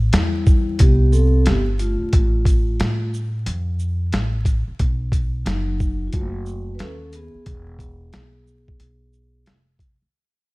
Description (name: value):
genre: hip hop, jazz-hop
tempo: 90 BPM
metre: 4/4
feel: swing 64% on 16ths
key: unclear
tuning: A4 = 439 Hz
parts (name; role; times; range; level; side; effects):
- upright bass; bass; 0.0-10.0 s; E1 to A2; -21 LUFS; equal; none
- vibraphone with soft mallets; accompaniment; 0.1-9.4 s; F#3 to B4; -26 LUFS; left 1 dB; none
- boom bap sampler-style drum kit; drums; 0.1-10.0 s; hi-hat, kick drum, shaker, snare drum; -19 LUFS; equal; none
room: digital ambience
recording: vinyl crackle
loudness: -17 LUFS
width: side -23 dB against mid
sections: 0.0-10.1 A section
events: fade-out 0.0-10.1; vibraphone solo 0.0-10.1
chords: 0.0 Am9; 2.1 F/A; 4.8 B7; 7.5 E